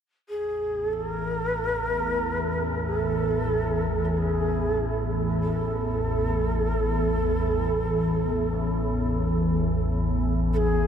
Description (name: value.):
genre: dark ambient drone.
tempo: 47 BPM.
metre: 4/4.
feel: straight.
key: A major.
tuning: A4 = 441 Hz.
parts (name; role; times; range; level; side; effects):
breathy mellow shakuhachi; melody; 0.3-10.9 s; G#4 to Bb4; -27 LUFS; right 2 dB; ping-pong delay.
organ-like drone; drone; 0.8-10.9 s; A1 to E2; -25 LUFS; left 1 dB; ensemble chorus, built-in reverb.
carillon bells; arpeggios; 6.8-10.9 s; E3 to C#4; -42 LUFS; left 2 dB; none.
room: moderate huge ambient reverb, RT60 7.3 s.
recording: dark, warm production.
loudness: -23 LUFS.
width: side -8 dB against mid.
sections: 0.3-10.9 A section.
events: none.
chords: 0.3 A.